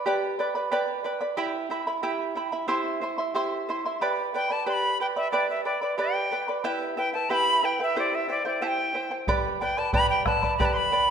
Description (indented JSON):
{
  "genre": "andean folk, Andean ensemble",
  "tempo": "91 BPM",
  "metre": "2/4",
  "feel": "straight",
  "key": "unclear",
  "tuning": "A4 = 439 Hz",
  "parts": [
    { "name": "charango", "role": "accompaniment", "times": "0.0-11.1 s", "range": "E4 to C6", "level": "-26 LUFS", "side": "right 2 dB", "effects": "none" },
    { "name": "bright reedy quena", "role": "melody", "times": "4.4-11.1 s", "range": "D5 to C6", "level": "-25 LUFS", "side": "equal", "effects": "none" },
    { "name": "bombo", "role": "percussion", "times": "9.3-10.7 s", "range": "none", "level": "-29 LUFS", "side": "equal", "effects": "none" }
  ],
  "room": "wet concert hall reverb, RT60 1.7 s",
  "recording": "minimal, uncompressed stereo recording",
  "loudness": "-24 LUFS",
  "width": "side -7 dB against mid",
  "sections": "0.0-4.0 A section; 4.0-11.1 B section",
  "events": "none",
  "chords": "0.0 G; 1.4 Em; 2.7 C; 4.0 G; 6.6 Em; 8.0 C; 9.3 G"
}